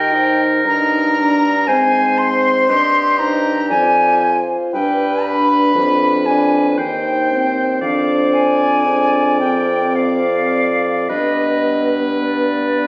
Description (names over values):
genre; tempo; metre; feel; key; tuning
classical, slow romantic movement for wind quintet; 52-60 BPM; 3/4; rubato; unclear; A4 = 439 Hz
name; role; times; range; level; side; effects
silver concert flute; melody; 0.0-12.9 s; D5 to C6; -17 LUFS; equal; none
warm oboe; second line; 0.0-12.9 s; G4 to D5; -20 LUFS; equal; none
dark clarinet; accompaniment; 0.0-12.9 s; G4 to Eb5; -25 LUFS; right 1 dB; none
warm French horn; accompaniment; 0.0-12.9 s; B3 to G4; -20 LUFS; equal; none
mellow bassoon; bass; 0.0-12.9 s; Eb2 to Eb3; -20 LUFS; equal; none
room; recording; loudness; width
wet recital hall reverb, RT60 1.6 s; recorded on a phone in the room, studio reverb, compression, nothing above 7.6 kHz; -13 LUFS; side -25 dB against mid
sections
0.0-12.9 A section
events
none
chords
0.0 Eb; 1.7 Abmaj7; 3.7 Ddim/F; 4.7 G; 6.8 Cm/Eb; 7.8 Ddim/F; 11.1 G